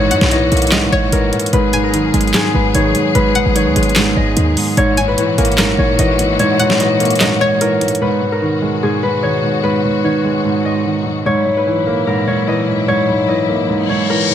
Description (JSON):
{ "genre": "hip hop, trap", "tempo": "148 BPM", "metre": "4/4", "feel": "half-time", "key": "G# minor", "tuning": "A4 = 440 Hz", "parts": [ { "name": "Celtic harp", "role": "melody", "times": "0.0-14.3 s", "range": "G#4 to D#5", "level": "-18 LUFS", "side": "left 2 dB", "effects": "tape echo" }, { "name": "dark concert grand piano", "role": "accompaniment", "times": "0.0-14.3 s", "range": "G#2 to A#3", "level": "-17 LUFS", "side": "right 2 dB", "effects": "none" }, { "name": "warm studio string section", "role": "sustained chords", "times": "0.0-14.3 s", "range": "A#2 to G#4", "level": "-21 LUFS", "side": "left 3 dB", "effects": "none" }, { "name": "short 808-style bass", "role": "bass", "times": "0.0-6.4 s", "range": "G#1 to G#2", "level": "-17 LUFS", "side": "equal", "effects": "none" }, { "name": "string-like resonator pluck", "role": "second line", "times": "0.1-7.6 s", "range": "C#5 to G#5", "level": "-24 LUFS", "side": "left 2 dB", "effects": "chorus, tape echo" }, { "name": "dubstep drum kit", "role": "drums", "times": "0.1-8.0 s", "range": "handclaps, hi-hat, snare drum", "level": "-18 LUFS", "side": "equal", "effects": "overdrive" }, { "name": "reverse cymbal", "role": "sound effects", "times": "13.8-14.3 s", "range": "none", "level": "-17 LUFS", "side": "left 7 dB", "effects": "none" } ], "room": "light reverb", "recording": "none", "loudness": "-12 LUFS", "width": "side -10 dB against mid", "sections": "0.0-8.0 A section; 8.0-14.3 B section", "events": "kick muted 6.4-8.0; reverse cymbal 13.8-14.3", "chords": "0.0 F#7/G#; 1.5 G#m7; 4.8 F#7/G#; 8.0 G#m7; 11.3 F#7/G#" }